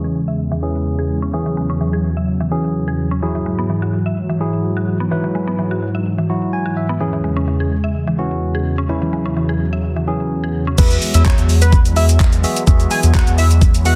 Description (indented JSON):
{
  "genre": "dance-pop",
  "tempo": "127 BPM",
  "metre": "4/4",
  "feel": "straight",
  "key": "E major",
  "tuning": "A4 = 437 Hz",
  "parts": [
    { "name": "tine electric piano", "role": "accompaniment", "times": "0.0-14.0 s", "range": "E3 to G#5", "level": "-24 LUFS", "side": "equal", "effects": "sidechain pumping, low-pass filter" },
    { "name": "sweeping resonant pad", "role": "sustained chords", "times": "0.0-14.0 s", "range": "E2 to G#3", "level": "-23 LUFS", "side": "equal", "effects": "chorus, sidechain pumping, low-pass filter" },
    { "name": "mallet-like synth pluck", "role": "arpeggios", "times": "0.0-10.8 s", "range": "E3 to E5", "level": "-28 LUFS", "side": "equal", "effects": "chorus, sidechain pumping, low-pass filter, tape echo" },
    { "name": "fat analog lead", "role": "melody", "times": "10.8-14.0 s", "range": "B4 to G#5", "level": "-24 LUFS", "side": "equal", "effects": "chorus, sidechain pumping, tape echo" },
    { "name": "round analog bass", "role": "bass", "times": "10.8-14.0 s", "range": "E2", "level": "-15 LUFS", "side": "equal", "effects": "sidechain pumping" },
    { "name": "pop drum kit", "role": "drums", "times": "10.8-14.0 s", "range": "crash cymbal, handclaps, hi-hat, kick drum, shaker", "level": "-16 LUFS", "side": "equal", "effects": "overdrive" }
  ],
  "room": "light reverb, digital ambience",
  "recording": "dense, heavily limited modern master",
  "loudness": "-17 LUFS",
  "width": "mono",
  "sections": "0.0-10.8 A section; 10.8-14.0 B section",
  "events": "filter sweep 0.0-10.8; tine electric piano fill 6.3-7.0; drop 10.8-14.0",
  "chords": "0.0 C#m/E; 3.2 Eadd9; 7.0 C#m/E; 10.8 Eadd9",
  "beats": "0.39 0.86 | 1.33 1.81 2.28 2.75 | 3.22 3.70 4.17 4.64 | 5.11 5.59 6.06 6.53 | 7.00 7.48 7.95 8.42 | 8.89 9.37 9.84 10.31 | 10.78 11.26 11.73 12.20 | 12.67 13.14 13.62"
}